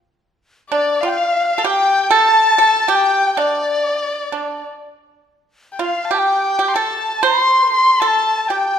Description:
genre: chinese traditional, Chinese chamber ensemble.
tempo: 95 BPM.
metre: 4/4.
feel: rubato.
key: unclear.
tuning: A4 = 440 Hz.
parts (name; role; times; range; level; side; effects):
bright reedy large dizi; melody; 0.7-8.8 s; D5 to C6; -16 LUFS; left 1 dB; none.
pipa; second line; 0.7-8.8 s; D4 to C5; -20 LUFS; right 6 dB; none.
warm erhu; second line; 0.7-8.8 s; D5 to C6; -20 LUFS; left 5 dB; none.
room: moderate recital hall reverb, RT60 1.4 s.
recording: none.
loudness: -13 LUFS.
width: side -8 dB against mid.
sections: 0.0-8.8 A section.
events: none.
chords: none.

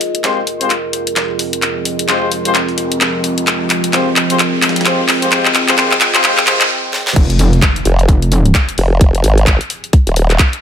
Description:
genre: bass house.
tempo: 130 BPM.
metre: 4/4.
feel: swing 60% on 16ths.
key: F minor.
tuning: A4 = 440 Hz.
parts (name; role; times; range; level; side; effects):
dark analog pad; sustained chords; 1.0-10.6 s; F3 to Ab5; -21 LUFS; right 2 dB; chorus, sidechain pumping.
dusty soul sampler-style drum kit; drums; 0.0-10.5 s; hi-hat, snare drum; -26 LUFS; right 1 dB; none.
garage drum kit; drums; 0.0-10.6 s; crash cymbal, handclaps, hi-hat, snare drum; -15 LUFS; left 1 dB; high-pass filter on hats, high-pass filter on snare, high-pass filter on cymbals.
riser and impact; sound effects; 0.0-9.0 s; none; -24 LUFS; equal; none.
warbly tape-like pad; texture; 0.0-6.7 s; F4 to Eb5; -22 LUFS; equal; chorus, built-in reverb, sidechain pumping.
warm horn section; stabs; 0.2-6.6 s; Ab3 to C5; -18 LUFS; left 3 dB; sidechain pumping, low-pass filter, dub echo.
metallic wobble bass; bass; 7.2-8.5 s; F1; -11 LUFS; equal; chorus, sidechain pumping.
electronic kick drum; drums; 7.2-10.5 s; none; -11 LUFS; equal; none.
formant-sweep wobble bass; bass; 7.9-10.4 s; Eb1 to Ab1; -11 LUFS; equal; chorus, overdrive, sidechain pumping.
room: light reverb.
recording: high-pass filter.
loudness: -11 LUFS.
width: side -9 dB against mid.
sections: 0.0-7.2 A section; 7.2-10.6 B section.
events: build-up 0.0-7.2; drum fill 0.0-6.7, 6.9; riser 0.0-6.7; filter sweep on analog synth pad 0.0-7.2; break 6.7-7.2; drop 7.2-10.6; impact 7.2-9.0.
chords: 0.0 Fmadd9.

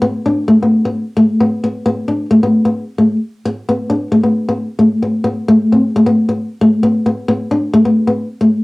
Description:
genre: highlife.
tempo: 132 BPM.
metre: 4/4.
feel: swing 54% on 16ths.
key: unclear.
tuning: A4 = 440 Hz.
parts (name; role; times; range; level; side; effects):
flamenco guitar; solo; 0.0-8.6 s; A3 to D4; -11 LUFS; left 1 dB; cassette tape.
room: wet small room reverb, RT60 0.6 s.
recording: home recording on cassette.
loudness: -12 LUFS.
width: side -23 dB against mid.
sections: 0.0-5.5 A section; 5.5-8.6 A section.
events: none.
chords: none.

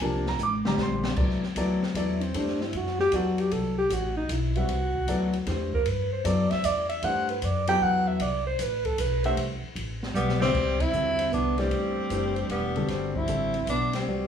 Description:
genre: modal jazz.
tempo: 153 BPM.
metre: 3/4.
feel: swing 66% on 8ths.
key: C lydian.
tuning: A4 = 440 Hz.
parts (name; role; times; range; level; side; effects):
warm grand piano; accompaniment; 0.0-14.3 s; C3 to D6; -29 LUFS; left 3 dB; none.
upright bass; bass; 0.0-14.3 s; E1 to G2; -31 LUFS; equal; none.
open jazz drum kit; drums; 0.3-14.0 s; crash cymbal, hi-hat, kick drum, ride cymbal, snare drum, toms; -34 LUFS; equal; none.
breathy alto saxophone; second line; 2.0-14.3 s; G3 to G5; -28 LUFS; right 2 dB; none.
bright tenor saxophone; melody; 10.2-14.3 s; B3 to E4; -28 LUFS; left 1 dB; none.
room: moderate large studio reverb, RT60 0.9 s.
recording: band playing live in one room, studio reverb.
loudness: -24 LUFS.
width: side -8 dB against mid.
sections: 0.0-1.2 A section; 1.2-10.5 A section; 10.5-14.3 B section.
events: drum fill 0.4-1.2, 10.1-10.5; alto saxophone solo 1.2-10.5; band accent 10.7, 13.9.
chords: 0.0 Am; 1.2 Cmaj7.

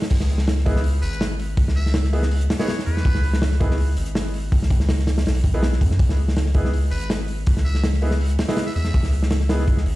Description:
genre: drum and bass, jungle.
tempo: 163 BPM.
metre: 4/4.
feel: swing 53% on 16ths.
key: C# minor.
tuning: A4 = 440 Hz.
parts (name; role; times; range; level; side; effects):
crunchy breakbeat drum kit; drums; 0.0-10.0 s; crash cymbal, hi-hat, kick drum, snare drum; -22 LUFS; equal; none.
saturated sub bass; bass; 0.1-10.0 s; G#1 to F#2; -20 LUFS; equal; none.
warm concert grand piano; stabs; 0.7-9.6 s; B3 to G#4; -30 LUFS; right 1 dB; dub echo.
trumpet with metal mute; melody; 1.0-3.4, 6.9-9.1 s; B4 to E5; -34 LUFS; equal; dub echo.
room: studio reverb.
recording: played on a big sound system in a bare room, stone room reverb.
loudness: -18 LUFS.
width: side -17 dB against mid.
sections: 0.1-10.0 A section.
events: drop 0.1-10.0.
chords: 0.1 C#m7.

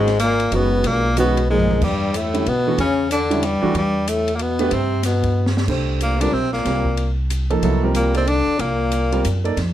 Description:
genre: modal jazz.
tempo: 186 BPM.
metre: 3/4.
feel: swing 63% on 8ths.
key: C dorian from 5.7 s.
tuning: A4 = 440 Hz.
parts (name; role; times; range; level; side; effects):
breathy tenor saxophone; melody; 0.0-9.4 s; G3 to D4; -21 LUFS; equal; none.
clear trombone; second line; 0.0-9.4 s; G2 to D3; -25 LUFS; left 5 dB; none.
warm grand piano; accompaniment; 0.0-9.6 s; D3 to D5; -22 LUFS; right 3 dB; none.
upright bass; bass; 0.0-9.7 s; F#1 to B2; -22 LUFS; equal; none.
open jazz drum kit; drums; 0.1-9.7 s; crash cymbal, hi-hat, kick drum, ride cymbal, snare drum, toms; -29 LUFS; left 1 dB; none.
room: light reverb.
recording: none.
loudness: -17 LUFS.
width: side -12 dB against mid.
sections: 0.0-5.7 A section; 5.7-9.7 B section.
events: drum fill 1.5-1.8, 5.4-5.7.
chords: 0.0 G#m9; 1.8 Em7; 4.7 G; 5.7 C9sus4.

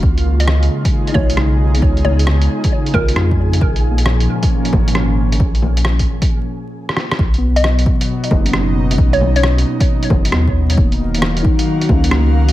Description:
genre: future garage.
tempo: 134 BPM.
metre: 4/4.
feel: swing 66% on 16ths.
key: unclear.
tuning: A4 = 444 Hz.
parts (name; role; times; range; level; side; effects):
muted felt-like synth keys; accompaniment; 0.0-12.5 s; F#3 to F4; -24 LUFS; left 2 dB; chorus, sidechain pumping, dub echo.
airy breathy pad; sustained chords; 0.0-12.5 s; Bb2 to F5; -21 LUFS; equal; chorus, vintage 12-bit sampler grit, sidechain pumping.
warm sub bass; bass; 0.0-12.5 s; Eb1 to F2; -15 LUFS; equal; sidechain pumping.
electronic kick drum; drums; 0.0-12.0 s; none; -16 LUFS; equal; none.
flickering grainy texture; texture; 0.5-6.3 s; Ab4 to Ab5; -30 LUFS; right 2 dB; built-in reverb.
lo-fi sampler-style drum kit; drums; 0.2-12.5 s; bongos, hi-hat, rim click; -21 LUFS; equal; none.
hollow square pluck; melody; 0.4-3.3, 7.6-10.0 s; Bb4 to Eb5; -23 LUFS; left 1 dB; chorus, dub echo.
room: little or no reverb.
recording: echo-heavy mix, vinyl crackle.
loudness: -12 LUFS.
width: side -15 dB against mid.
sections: 0.0-7.2 A section; 7.2-12.5 B section.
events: break 6.3-7.2; drum fill 6.9-7.2.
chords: 0.0 Db7; 3.6 Bbm; 7.2 Bmaj7; 10.8 Ebm7.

